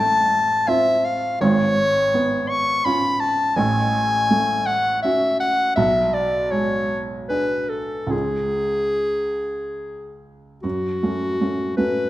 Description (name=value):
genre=classical, romantic duo for clarinet and grand piano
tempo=70-85 BPM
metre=3/4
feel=rubato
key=F# minor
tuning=A4 = 441 Hz
part: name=bright clarinet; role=melody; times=0.0-12.1 s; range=F#4 to C#6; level=-20 LUFS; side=left 1 dB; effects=none
part: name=warm baby grand piano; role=accompaniment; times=0.0-12.1 s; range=G#1 to G#4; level=-23 LUFS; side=right 2 dB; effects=none
room=moderate recital hall reverb, RT60 1.4 s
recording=none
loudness=-18 LUFS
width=side -15 dB against mid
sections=0.0-10.6 A section; 10.6-12.1 B section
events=none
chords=0.0 F/A; 1.4 C#7/G#; 3.6 F#m/A; 5.8 G#dim/B; 8.1 C#; 10.6 F#m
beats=0.68 | 1.41 2.14 2.85 | 3.57 4.30 5.04 | 5.78 6.52 7.30 | 8.12 8.97 9.81 | 10.64 11.40